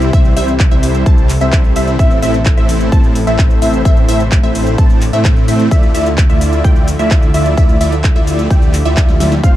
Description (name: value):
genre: EDM, festival progressive house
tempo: 129 BPM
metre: 4/4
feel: straight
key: unclear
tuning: A4 = 439 Hz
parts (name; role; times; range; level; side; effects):
- lush unison pad; sustained chords; 0.0-9.6 s; C3 to E5; -23 LUFS; equal; chorus, sidechain pumping
- wide unison pluck; arpeggios; 0.0-9.6 s; E5 to A5; -21 LUFS; left 1 dB; cassette tape, sidechain pumping, dub echo
- supersaw chords; riff; 0.0-9.6 s; G3 to A5; -17 LUFS; equal; vintage 12-bit sampler grit, sidechain pumping, dub echo
- detuned saw bass; bass; 0.0-9.6 s; F1 to A2; -16 LUFS; equal; sidechain pumping
- big-room dance drum kit; drums; 0.0-9.5 s; handclaps, hi-hat, shaker, snare drum; -23 LUFS; equal; none
- electronic kick drum; drums; 0.1-9.5 s; none; -10 LUFS; equal; none
room: digital ambience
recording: dark, warm production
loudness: -9 LUFS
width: side -14 dB against mid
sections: 0.0-9.6 A section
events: drum fill 9.1-9.4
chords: 0.0 C; 2.0 Am; 5.7 Dmadd9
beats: | 0.13 0.60 1.06 1.53 | 1.99 2.46 2.92 3.39 | 3.85 4.32 4.78 5.25 | 5.71 6.18 6.64 7.11 | 7.57 8.04 8.50 8.97 | 9.44